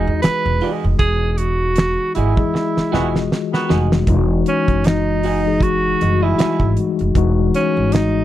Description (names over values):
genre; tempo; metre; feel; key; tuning
R&B, neo-soul; 78 BPM; 4/4; swing 57% on 16ths; unclear; A4 = 440 Hz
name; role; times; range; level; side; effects
warm tenor saxophone; melody; 0.0-8.2 s; C#4 to B4; -20 LUFS; right 3 dB; none
electric guitar through a small old amp; second line; 0.0-6.6 s; F#4 to D#5; -25 LUFS; right 7 dB; lush chorus
mellow tine electric piano; accompaniment; 0.0-8.2 s; E3 to D#5; -20 LUFS; left 6 dB; medium stereo tremolo
upright bass; bass; 0.0-8.2 s; E1 to E2; -19 LUFS; right 1 dB; none
damped 70s drum kit; drums; 0.2-8.1 s; finger snaps, hi-hat, kick drum, snare drum; -18 LUFS; right 1 dB; none
clear horn section; stabs; 2.9-3.8 s; D#3 to F#4; -26 LUFS; right 3 dB; slapback echo
room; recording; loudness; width
small room ambience; dry, close 1970s-style studio recording; -15 LUFS; side -13 dB against mid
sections
0.0-4.1 A section; 4.1-8.2 B section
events
band accent 1.0-4.1; drum fill 2.5-4.1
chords
0.0 Emaj9